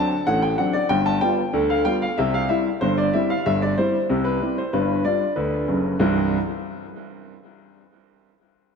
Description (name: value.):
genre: ragtime piano.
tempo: 94 BPM.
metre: 2/4.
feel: straight.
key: C major.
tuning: A4 = 441 Hz.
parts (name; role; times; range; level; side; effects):
warm grand piano; solo; 0.0-6.4 s; F#1 to A5; -19 LUFS; left 1 dB; wide subtle chorus, ping-pong delay.
room: wet lush hall reverb, RT60 2.1 s.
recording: dreamy mix soaked in reverb.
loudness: -19 LUFS.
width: side -6 dB against mid.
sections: 0.0-6.0 A section; 6.0-7.3 B section.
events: none.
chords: 0.0 D7; 0.9 G7; 2.2 C/G; 4.7 G7; 6.0 C.